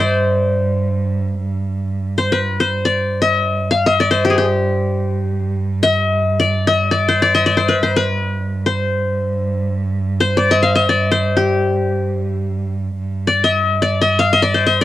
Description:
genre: Turkish makam ensemble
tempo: free time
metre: none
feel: none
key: G makam hicaz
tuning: A4 = 435 Hz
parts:
  - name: qanun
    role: melody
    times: 0.0-14.8 s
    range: G4 to F5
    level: -15 LUFS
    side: left 3 dB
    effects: cassette tape
  - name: rich cello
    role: drone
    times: 0.0-14.8 s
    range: G2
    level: -20 LUFS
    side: right 2 dB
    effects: stereo widening
room: wet booth ambience, RT60 0.1 s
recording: home recording on cassette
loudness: -15 LUFS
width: side -14 dB against mid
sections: 0.0-13.0 A section; 13.0-14.8 A section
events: none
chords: none

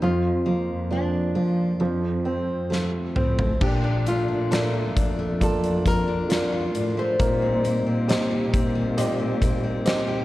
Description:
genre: pop ballad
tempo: 67 BPM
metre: 4/4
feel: straight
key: Bb major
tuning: A4 = 440 Hz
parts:
  - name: nylon-string guitar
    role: melody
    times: 0.0-9.6 s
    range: D4 to C5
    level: -28 LUFS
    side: left 1 dB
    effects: none
  - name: warm baby grand piano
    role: accompaniment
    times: 0.0-10.2 s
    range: F3 to Eb5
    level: -27 LUFS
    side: right 3 dB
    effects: none
  - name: picked steel-string acoustic guitar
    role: arpeggios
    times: 0.0-10.2 s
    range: F2 to G4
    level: -30 LUFS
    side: left 3 dB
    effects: none
  - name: dark studio cello section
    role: bass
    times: 0.0-10.2 s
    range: F2 to F3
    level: -27 LUFS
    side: left 1 dB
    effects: none
  - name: huge arena drum kit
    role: drums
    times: 2.7-10.1 s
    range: crash cymbal, hi-hat, kick drum, snare drum, toms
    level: -26 LUFS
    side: equal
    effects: none
  - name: tonewheel organ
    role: sustained chords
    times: 3.6-10.2 s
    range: F3 to Eb4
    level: -31 LUFS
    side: left 1 dB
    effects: overdrive, slow rotary speaker
room: light reverb, small room ambience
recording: worn, warbling old tape, cassette tape, warbly pitch drift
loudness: -21 LUFS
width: side -16 dB against mid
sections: 0.0-3.6 A section; 3.6-10.2 B section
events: drum fill 2.7-3.6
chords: 0.0 Bb/F; 1.8 F; 7.2 Eb6/Bb

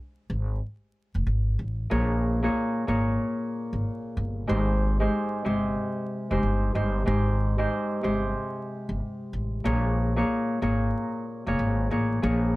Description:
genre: hip hop, boom-bap hip-hop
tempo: 93 BPM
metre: 4/4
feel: swing 63% on 16ths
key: unclear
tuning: A4 = 438 Hz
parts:
  - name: upright bass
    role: bass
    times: 0.3-12.6 s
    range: F1 to Bb1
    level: -26 LUFS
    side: equal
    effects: none
  - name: Celtic harp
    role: accompaniment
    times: 1.9-12.6 s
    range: Ab2 to Db5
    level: -26 LUFS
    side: equal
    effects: cassette tape, high-pass filter, low-pass filter
room: light reverb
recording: vinyl crackle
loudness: -24 LUFS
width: side -19 dB against mid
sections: 0.0-12.6 A section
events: break 0.0-1.9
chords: 0.0 Bbm7; 4.5 Abmaj7; 9.6 Bbm7

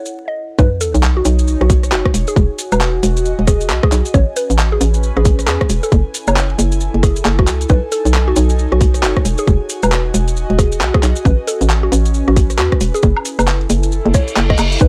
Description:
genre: UK garage, two-step garage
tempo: 135 BPM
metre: 4/4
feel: swing 61% on 16ths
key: F# dorian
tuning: A4 = 441 Hz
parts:
  - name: mallet-like synth pluck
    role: melody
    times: 0.0-14.9 s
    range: F#4 to D#5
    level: -24 LUFS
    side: equal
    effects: chorus
  - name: airy breathy pad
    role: texture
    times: 0.0-14.9 s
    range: C#4 to G#5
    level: -27 LUFS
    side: equal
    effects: chorus, sidechain pumping
  - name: maracas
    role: percussion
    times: 0.1-14.9 s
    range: none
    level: -29 LUFS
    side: equal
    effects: none
  - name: hollow knocking FM bass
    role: bass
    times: 0.6-14.9 s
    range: E1 to E2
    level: -17 LUFS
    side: equal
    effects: none
  - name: electronic kick drum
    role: drums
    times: 0.6-14.9 s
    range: none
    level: -15 LUFS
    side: equal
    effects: overdrive
  - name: sub drop and reverse cymbal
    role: sound effects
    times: 0.6-2.4, 14.1-14.8 s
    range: none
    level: -27 LUFS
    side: equal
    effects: none
  - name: garage drum kit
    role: drums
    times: 0.8-14.8 s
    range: handclaps, hi-hat, rim click, woodblock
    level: -22 LUFS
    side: equal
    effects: overdrive, low-pass filter on perc, low-pass filter on hats, low-pass filter on snare
room: little or no reverb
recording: dry, gritty hardware recording, transformer saturation, vinyl crackle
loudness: -15 LUFS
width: mono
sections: 0.6-14.9 A section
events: drop 0.6-14.9; impact 0.6-2.4; reverse cymbal 14.1-14.8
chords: 0.0 F#m7; 0.6 B69; 2.1 Emaj9; 4.1 Amaj9; 5.9 F#m9; 7.7 B13; 9.3 Emaj9; 11.3 Amaj9; 13.0 F#m9

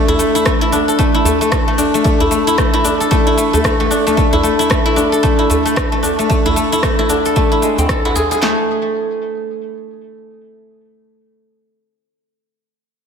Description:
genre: organic downtempo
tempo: 113 BPM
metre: 4/4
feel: swing 60% on 16ths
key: unclear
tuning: A4 = 440 Hz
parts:
  - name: guzheng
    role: arpeggios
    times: 0.0-11.7 s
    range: G#3 to A4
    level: -14 LUFS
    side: left 1 dB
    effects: tape echo
  - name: djembe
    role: percussion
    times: 0.1-8.4 s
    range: none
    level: -23 LUFS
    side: right 1 dB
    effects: none
  - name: electronic cabasa and rim click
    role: drums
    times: 0.2-8.4 s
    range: none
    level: -23 LUFS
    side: equal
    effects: none
  - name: deep house drum kit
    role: drums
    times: 0.5-8.6 s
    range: handclaps, kick drum, snare drum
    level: -18 LUFS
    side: equal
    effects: none
room: wet plate reverb, RT60 2.1 s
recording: dreamy mix soaked in reverb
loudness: -12 LUFS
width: side -6 dB against mid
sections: 0.0-8.4 A section; 8.4-12.7 B section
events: none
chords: 0.0 D5; 8.4 N.C.

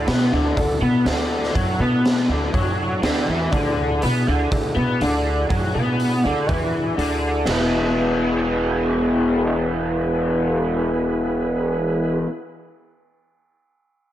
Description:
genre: psychedelic rock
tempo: 121 BPM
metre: 4/4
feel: straight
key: E mixolydian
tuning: A4 = 439 Hz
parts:
  - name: percussive tonewheel organ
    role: sustained chords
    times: 0.0-12.2 s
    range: B3 to B4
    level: -28 LUFS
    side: right 3 dB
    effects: overdrive, fast rotary speaker
  - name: raw garage guitar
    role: riff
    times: 0.0-12.3 s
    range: E2 to E4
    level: -20 LUFS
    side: left 1 dB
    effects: overdrive, rotary speaker
  - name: upright bass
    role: bass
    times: 0.0-12.2 s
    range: E1 to B2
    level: -26 LUFS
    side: equal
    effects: none
  - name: raw garage drum kit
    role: drums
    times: 0.1-7.6 s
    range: hi-hat, kick drum, ride cymbal, snare drum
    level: -26 LUFS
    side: equal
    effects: none
room: moderate echo chamber reverb, RT60 1.6 s, small room ambience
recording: none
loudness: -18 LUFS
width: side -12 dB against mid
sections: 0.0-7.5 A section; 7.5-11.4 B section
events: none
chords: 0.0 Dadd9; 7.5 E

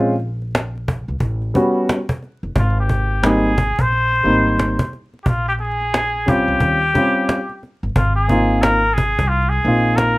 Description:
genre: hip hop, jazz-hop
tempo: 89 BPM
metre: 4/4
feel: swing 62% on 16ths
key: Ab major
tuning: A4 = 440 Hz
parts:
  - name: warm upright piano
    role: accompaniment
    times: 0.0-10.2 s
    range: G3 to F#4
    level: -18 LUFS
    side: equal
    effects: none
  - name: upright bass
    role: bass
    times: 0.0-10.1 s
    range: F#1 to Eb2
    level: -21 LUFS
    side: equal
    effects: none
  - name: cajon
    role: drums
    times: 0.1-10.2 s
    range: none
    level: -21 LUFS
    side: equal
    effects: none
  - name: trumpet with straight mute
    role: melody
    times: 2.6-10.2 s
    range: F4 to C5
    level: -19 LUFS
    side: equal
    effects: none
room: light reverb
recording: rough home demo mix, vinyl crackle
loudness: -15 LUFS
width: side -20 dB against mid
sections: 0.0-10.2 A section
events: none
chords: 0.0 Bbm; 1.2 A13; 2.6 Abmaj7; 5.3 Bbm7; 6.6 Eb13; 8.0 Ab6

